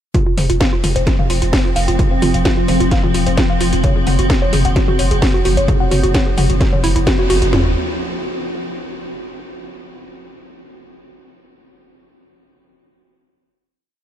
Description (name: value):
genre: driving peak-time techno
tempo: 130 BPM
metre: 4/4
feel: straight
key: unclear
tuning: A4 = 440 Hz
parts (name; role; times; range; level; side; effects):
- woody wave-folded pluck; riff; 0.1-7.7 s; E4 to Gb5; -21 LUFS; right 1 dB; chorus, sidechain pumping, ping-pong delay
- swarming drone; drone; 0.9-7.6 s; F3 to C4; -22 LUFS; left 1 dB; built-in reverb, sidechain pumping
- techno drum kit; drums; 0.1-7.6 s; kick drum, snare drum, toms; -17 LUFS; equal; none
- techno drum kit; drums; 0.1-7.5 s; hi-hat, snare drum, toms; -21 LUFS; left 1 dB; sidechain pumping on hats, sidechain pumping on toms
- saturated sub bass; bass; 0.4-7.7 s; F1 to Gb1; -19 LUFS; equal; overdrive, sidechain pumping, low-pass filter
room: light reverb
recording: none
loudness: -13 LUFS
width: side -11 dB against mid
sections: 0.1-7.5 drop; 7.5-9.4 final chord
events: drop 0.1-7.5; band accent 7.1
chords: 0.1 F5; 3.8 Gb5; 7.5 N.C.